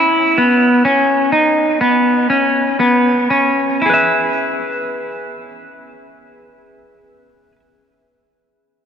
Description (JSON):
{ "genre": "dream pop", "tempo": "58-64 BPM", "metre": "4/4", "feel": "straight", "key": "E major", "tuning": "A4 = 437 Hz", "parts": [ { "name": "clean electric guitar", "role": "arpeggios", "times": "0.0-7.6 s", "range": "B3 to E5", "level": "-12 LUFS", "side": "equal", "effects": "wide subtle chorus, tape echo" } ], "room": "wet huge ambient reverb, RT60 4.4 s", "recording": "none", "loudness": "-12 LUFS", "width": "side -8 dB against mid", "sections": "0.0-3.8 A section; 3.8-8.0 B section", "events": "slowing down 0.0-3.8", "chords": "0.0 C#7(no3); 3.8 E" }